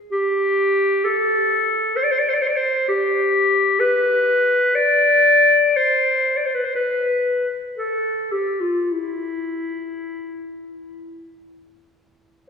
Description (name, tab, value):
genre	classical, free, expressive piece for unaccompanied clarinet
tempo	40-66 BPM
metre	3/4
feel	rubato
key	A minor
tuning	A4 = 440 Hz
part	clear clarinet	solo	0.1-11.2 s	E4 to D5	-17 LUFS	left 1 dB	none
room	wet concert hall reverb, RT60 2.6 s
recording	small room ambience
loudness	-16 LUFS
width	side -6 dB against mid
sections	0.0-12.5 A section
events	none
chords	none